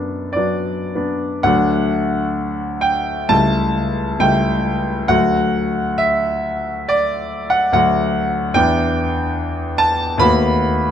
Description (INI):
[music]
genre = classical, romantic nocturne for solo piano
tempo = 51-73 BPM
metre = 4/4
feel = rubato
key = D major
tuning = A4 = 440 Hz
[part]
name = clear concert grand piano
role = solo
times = 0.0-10.9 s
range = C#2 to B5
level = -15 LUFS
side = equal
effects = none
[sound]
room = moderate recital hall reverb, RT60 1.6 s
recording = close, detailed microphones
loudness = -15 LUFS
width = side -9 dB against mid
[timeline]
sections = 0.0-1.5 A section; 1.5-10.9 B section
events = none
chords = 0.0 Bm; 1.5 D; 3.3 A7/C#; 5.1 D; 8.6 Em7; 10.2 B7/D#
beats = 0.37 | 1.47 2.39 3.32 4.23 | 5.12 6.00 6.89 7.74 | 8.58 9.41 10.23